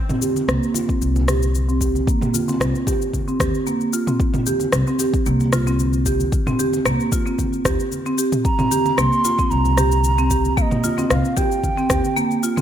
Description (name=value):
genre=organic downtempo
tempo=113 BPM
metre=4/4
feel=swing 53% on 16ths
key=C minor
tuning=A4 = 440 Hz
part: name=marimba with hard mallets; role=arpeggios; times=0.1-12.6 s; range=Bb3 to G4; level=-21 LUFS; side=right 2 dB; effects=low-pass filter, digital delay
part: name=deep house drum kit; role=drums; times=0.1-12.6 s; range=cabasa, rim click, toms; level=-24 LUFS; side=left 1 dB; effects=none
part: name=congas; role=percussion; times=0.1-12.3 s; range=none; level=-30 LUFS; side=right 1 dB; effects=none
part: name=upright bass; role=bass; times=0.5-12.0 s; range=C2 to Eb2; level=-20 LUFS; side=left 1 dB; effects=sidechain pumping
part: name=electronic kick drum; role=drums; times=0.9-12.0 s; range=none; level=-22 LUFS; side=left 1 dB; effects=none
part: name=bansuri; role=melody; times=8.4-12.4 s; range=Eb5 to C6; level=-22 LUFS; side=right 3 dB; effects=digital delay
room=light reverb, small room ambience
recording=none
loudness=-17 LUFS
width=side -10 dB against mid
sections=0.0-12.6 A section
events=filter sweep on marimba 0.0-12.6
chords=0.0 C5